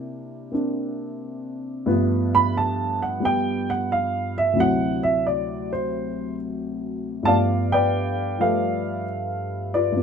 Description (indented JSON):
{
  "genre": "solo jazz",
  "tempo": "89 BPM",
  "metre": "4/4",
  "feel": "swing 69% on 8ths",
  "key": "G mixolydian",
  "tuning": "A4 = 440 Hz",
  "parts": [
    { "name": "dark upright piano", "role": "solo", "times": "0.0-10.0 s", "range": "D2 to B5", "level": "-21 LUFS", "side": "equal", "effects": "none" }
  ],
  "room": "moderate studio ambience, RT60 0.5 s",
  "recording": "minimal, uncompressed stereo recording",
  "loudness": "-21 LUFS",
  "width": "side -6 dB against mid",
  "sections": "0.0-7.2 A section; 7.2-10.0 B section",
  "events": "upright piano solo 0.0-7.2",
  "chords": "0.0 C9; 1.9 G9; 4.6 D9; 7.2 G9"
}